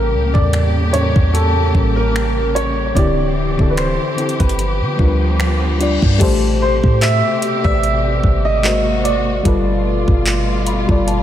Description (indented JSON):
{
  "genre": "contemporary R&B",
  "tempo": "74 BPM",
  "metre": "4/4",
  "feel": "swing 54% on 16ths",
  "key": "A minor",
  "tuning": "A4 = 439 Hz",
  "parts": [
    { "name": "warm grand piano", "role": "melody", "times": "0.0-11.2 s", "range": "A4 to E5", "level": "-20 LUFS", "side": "right 2 dB", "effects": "wide subtle chorus, tape echo" },
    { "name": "mellow FM electric piano", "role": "accompaniment", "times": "0.0-11.2 s", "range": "A2 to B5", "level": "-20 LUFS", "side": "left 4 dB", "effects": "chorus" },
    { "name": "warm studio string section", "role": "sustained chords", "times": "0.0-11.2 s", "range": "B2 to G4", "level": "-23 LUFS", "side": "right 1 dB", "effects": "sidechain pumping" },
    { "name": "clean 808-style bass", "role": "bass", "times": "0.0-11.2 s", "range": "D1 to D3", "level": "-18 LUFS", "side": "equal", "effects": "none" },
    { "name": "smooth R&B drum kit", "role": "drums", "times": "0.3-11.2 s", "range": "crash cymbal, finger snaps, handclaps, hi-hat, kick drum", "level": "-19 LUFS", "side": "equal", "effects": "none" },
    { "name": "reverse cymbal", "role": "sound effects", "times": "5.2-6.2 s", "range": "none", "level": "-30 LUFS", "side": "left 5 dB", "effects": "none" }
  ],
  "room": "moderate cathedral reverb, RT60 3.9 s",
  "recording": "dreamy mix soaked in reverb",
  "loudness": "-13 LUFS",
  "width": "side -11 dB against mid",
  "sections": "0.0-6.2 A section; 6.2-11.2 B section",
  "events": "reverse cymbal 5.2-6.2; FM electric piano fill 10.3-11.2",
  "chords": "0.0 A7b9; 3.0 D9sus4; 4.6 G7; 6.2 Am9; 8.6 G#9; 9.5 G9"
}